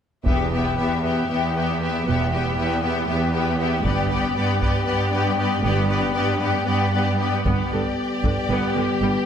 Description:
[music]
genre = cinematic, epic orchestral film score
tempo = 233 BPM (eighths)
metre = 7/8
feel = straight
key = G major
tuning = A4 = 442 Hz
[part]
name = rich symphonic violin section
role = melody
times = 0.3-9.2 s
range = D5 to E5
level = -30 LUFS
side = left 4 dB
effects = none
[part]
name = clear symphonic violin section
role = second line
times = 0.3-9.3 s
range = G4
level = -26 LUFS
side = left 4 dB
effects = none
[part]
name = clear symphonic viola section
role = accompaniment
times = 0.3-9.1 s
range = D3 to B3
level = -26 LUFS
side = left 1 dB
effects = none
[part]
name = rich symphonic double bass section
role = bass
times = 0.3-9.1 s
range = E1 to G1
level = -27 LUFS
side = right 4 dB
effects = none
[part]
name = warm symphonic cello section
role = bass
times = 0.3-9.1 s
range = E2 to G2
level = -24 LUFS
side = right 2 dB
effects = none
[part]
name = taiko ensemble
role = drums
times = 0.3-8.5 s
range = none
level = -26 LUFS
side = equal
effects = none
[part]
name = mellow French horn section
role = sustained chords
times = 7.5-9.3 s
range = G3 to B3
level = -25 LUFS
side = left 1 dB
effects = none
[sound]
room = moderate scoring stage reverb, RT60 1.6 s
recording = none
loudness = -19 LUFS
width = side -8 dB against mid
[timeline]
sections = 0.3-7.5 A section; 7.5-9.3 B section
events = build-up 7.5-9.3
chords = 0.3 Em; 3.9 G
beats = | 0.27 0.53 0.78 1.04 1.30 1.56 1.81 | 2.07 2.33 2.58 2.83 3.09 3.34 3.60 | 3.85 4.11 4.37 4.62 4.88 5.13 5.39 | 5.64 5.90 6.16 6.42 6.68 6.94 7.20 | 7.46 7.72 7.98 8.24 8.50 8.76 9.02

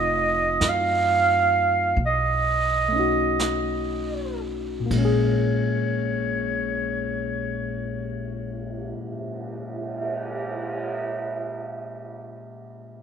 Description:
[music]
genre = jazz ballad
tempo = 38-46 BPM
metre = 4/4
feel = swing 68% on 8ths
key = Bb minor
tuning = A4 = 442 Hz
[part]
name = growling clarinet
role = melody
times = 0.0-9.0 s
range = Db5 to F5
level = -23 LUFS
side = right 3 dB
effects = none
[part]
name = barky tine electric piano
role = accompaniment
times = 0.0-13.0 s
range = Bb2 to Ab4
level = -28 LUFS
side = left 4 dB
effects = none
[part]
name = upright bass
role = bass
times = 0.0-8.9 s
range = F1 to Gb2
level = -30 LUFS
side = equal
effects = none
[part]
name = vintage brush drum kit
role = drums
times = 0.6-10.8 s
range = brushed snare drum, cymbal swell, hi-hat, kick drum, ride cymbal, snare drum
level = -32 LUFS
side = right 3 dB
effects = none
[sound]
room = light reverb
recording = minimal, uncompressed stereo recording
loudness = -22 LUFS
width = side -7 dB against mid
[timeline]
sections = 0.0-4.9 A section; 4.9-11.2 B section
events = slowing down 0.0-4.9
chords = 0.0 F7; 2.0 B7; 4.9 Bbm7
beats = 0.62 1.97 3.40 | 4.91 6.48 8.03 9.59

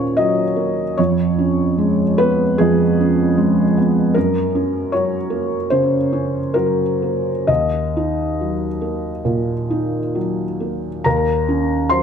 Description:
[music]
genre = neoclassical minimalist piano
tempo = 63-78 BPM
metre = 4/4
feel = rubato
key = Eb minor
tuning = A4 = 441 Hz
[part]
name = felt-muted upright piano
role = solo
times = 0.0-12.0 s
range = Eb2 to C6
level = -16 LUFS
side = equal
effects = slapback echo
[sound]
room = moderate stone room reverb, RT60 1.2 s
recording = dark, warm production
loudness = -16 LUFS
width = side -7 dB against mid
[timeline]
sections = 0.0-11.1 A section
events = none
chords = 0.0 Ebm7; 1.0 Db7/F; 4.2 Gb; 7.5 Ebm; 11.1 Ebm7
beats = 0.17 | 0.98 1.78 2.59 3.38 | 4.16 4.92 5.70 6.55 | 7.48 8.38 9.26 10.16 | 11.05 11.90

